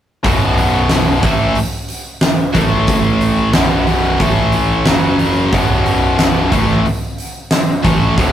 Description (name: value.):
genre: hard rock.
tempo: 91 BPM.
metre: 4/4.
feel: straight.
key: unclear.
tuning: A4 = 440 Hz.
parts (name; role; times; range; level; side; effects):
tight distorted guitar; riff; 0.2-8.3 s; B1 to A3; -20 LUFS; left 5 dB; distortion.
tight distorted guitar; riff; 0.2-8.3 s; B1 to A3; -19 LUFS; right 3 dB; distortion.
tight distorted guitar; riff; 0.2-8.3 s; B1 to A3; -20 LUFS; equal; distortion.
fuzz picked electric bass; bass; 0.2-8.3 s; B0 to A1; -19 LUFS; equal; overdrive.
huge arena drum kit; drums; 0.2-8.3 s; hi-hat, kick drum, snare drum; -16 LUFS; right 1 dB; none.
room: moderate studio reverb, RT60 0.6 s.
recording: rough rehearsal-room recording.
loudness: -12 LUFS.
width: side -10 dB against mid.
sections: 0.2-8.3 A section.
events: none.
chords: 0.2 B5; 2.6 A5; 3.5 B5; 4.2 A5; 4.9 F#5; 5.5 B5.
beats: | 0.24 0.90 1.56 2.22 | 2.88 3.54 4.20 4.86 | 5.52 6.19 6.85 7.51 | 8.17.